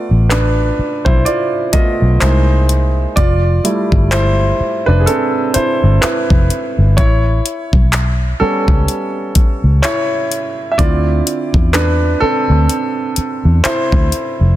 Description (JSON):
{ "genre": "contemporary R&B", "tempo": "63 BPM", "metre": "4/4", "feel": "swing 58% on 16ths", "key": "D dorian", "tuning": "A4 = 443 Hz", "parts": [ { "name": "warm grand piano", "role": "accompaniment", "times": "0.0-14.6 s", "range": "D3 to E5", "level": "-16 LUFS", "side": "right 1 dB", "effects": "none" }, { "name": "vintage muted fingered electric bass", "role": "bass", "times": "0.1-14.6 s", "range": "F1 to E2", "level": "-13 LUFS", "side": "equal", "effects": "none" }, { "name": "smooth R&B drum kit", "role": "drums", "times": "0.3-14.4 s", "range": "handclaps, hi-hat, kick drum", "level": "-16 LUFS", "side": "equal", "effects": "none" } ], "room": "digital ambience", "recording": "dense, heavily limited modern master", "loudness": "-12 LUFS", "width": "side -14 dB against mid", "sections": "0.0-14.6 A section", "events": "grand piano solo 0.0-14.6", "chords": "0.0 G9 (rootless); 2.2 C7alt; 3.2 Fmaj7; 7.0 A7; 10.8 Dm9" }